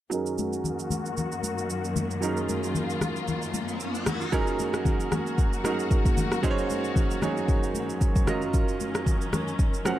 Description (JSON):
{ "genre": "amapiano", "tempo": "114 BPM", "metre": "4/4", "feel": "swing 55% on 16ths", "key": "F# major", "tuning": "A4 = 440 Hz", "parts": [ { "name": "bright concert grand piano", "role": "accompaniment", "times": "0.1-10.0 s", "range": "E#3 to F#5", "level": "-30 LUFS", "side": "right 4 dB", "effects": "low-pass filter" }, { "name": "warm studio string section", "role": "sustained chords", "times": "0.1-10.0 s", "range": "F#2 to F#4", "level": "-32 LUFS", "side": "left 3 dB", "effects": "low-pass filter" }, { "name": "afro-pop drum kit", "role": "drums", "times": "0.1-10.0 s", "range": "kick drum, rim click, shaker", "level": "-26 LUFS", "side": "equal", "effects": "none" }, { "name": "congas", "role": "percussion", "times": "0.4-10.0 s", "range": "none", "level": "-33 LUFS", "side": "left 3 dB", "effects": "none" }, { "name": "riser", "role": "sound effects", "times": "3.0-4.3 s", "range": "none", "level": "-36 LUFS", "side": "equal", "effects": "none" } ], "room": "small room ambience", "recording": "dark, warm production", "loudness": "-24 LUFS", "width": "side -13 dB against mid", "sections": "0.1-4.3 A section; 4.3-10.0 B section", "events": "filter sweep 0.1-4.3; kick muted 2.2-4.3; riser 3.0-4.3", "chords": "0.1 F#6; 8.3 D#m7/F#", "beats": "| 0.12 0.64 1.17 1.70 | 2.22 2.75 3.28 3.80 | 4.33 4.86 5.38 5.91 | 6.43 6.96 7.49 8.01 | 8.54 9.06 9.59" }